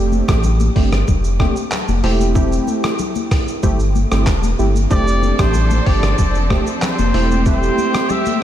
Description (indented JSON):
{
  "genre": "afrobeats",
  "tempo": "94 BPM",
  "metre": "4/4",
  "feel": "straight",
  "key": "F major",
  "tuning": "A4 = 439 Hz",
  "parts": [
    { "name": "warm analog keys", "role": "accompaniment", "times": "0.0-8.1 s", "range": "A3 to G4", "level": "-21 LUFS", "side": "right 2 dB", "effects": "chorus" },
    { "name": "saturated sub bass", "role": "bass", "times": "0.0-7.7 s", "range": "E1 to A1", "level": "-17 LUFS", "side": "equal", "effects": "none" },
    { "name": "lo-fi sampler-style drum kit", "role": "drums", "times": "0.1-8.4 s", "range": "handclaps, hi-hat, kick drum, rim click, shaker", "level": "-20 LUFS", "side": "equal", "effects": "none" },
    { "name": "congas", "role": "percussion", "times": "0.1-8.4 s", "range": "none", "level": "-25 LUFS", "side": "left 7 dB", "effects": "none" },
    { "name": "warm trumpet", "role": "melody", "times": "4.9-8.4 s", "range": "C5 to E5", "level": "-24 LUFS", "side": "right 1 dB", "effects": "ping-pong delay" },
    { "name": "rich studio string section", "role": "sustained chords", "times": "4.9-8.4 s", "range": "F3 to A4", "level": "-24 LUFS", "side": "equal", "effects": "none" }
  ],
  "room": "moderate huge ambient reverb, RT60 8.5 s",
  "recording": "dreamy mix soaked in reverb",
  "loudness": "-14 LUFS",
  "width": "side -11 dB against mid",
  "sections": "0.0-8.4 A section",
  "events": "none",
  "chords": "0.0 F6; 2.0 Am7/E; 4.9 F6; 7.1 Am7/E",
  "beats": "0.44 1.08 1.72 | 2.35 2.99 3.63 4.27 | 4.91 5.55 6.18 6.82 | 7.46 8.10"
}